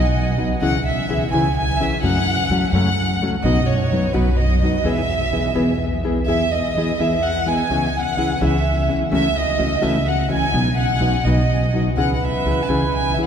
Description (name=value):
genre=mexican folk, mariachi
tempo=84 BPM (dotted quarters)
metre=6/8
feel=straight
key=E major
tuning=A4 = 440 Hz
part: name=warm chamber violin section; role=melody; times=0.0-13.3 s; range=B4 to A5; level=-22 LUFS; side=right 1 dB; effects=none
part: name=nylon-string guitar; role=accompaniment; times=0.0-13.3 s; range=F#2 to G#4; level=-21 LUFS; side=left 2 dB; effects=none
part: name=upright bass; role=bass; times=0.0-13.1 s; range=B1 to F#2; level=-21 LUFS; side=right 1 dB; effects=none
part: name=mellow trumpet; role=second line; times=12.0-13.3 s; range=B4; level=-24 LUFS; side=right 4 dB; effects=none
room=wet cathedral reverb, RT60 6.4 s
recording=recorded in a church or concert hall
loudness=-17 LUFS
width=side -8 dB against mid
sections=0.0-6.3 A section; 6.3-13.3 A section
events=none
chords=0.0 B; 0.6 C#m; 2.0 F#m; 3.4 B; 4.9 E; 7.7 C#m; 9.1 A6/C#; 10.5 B; 12.0 C#m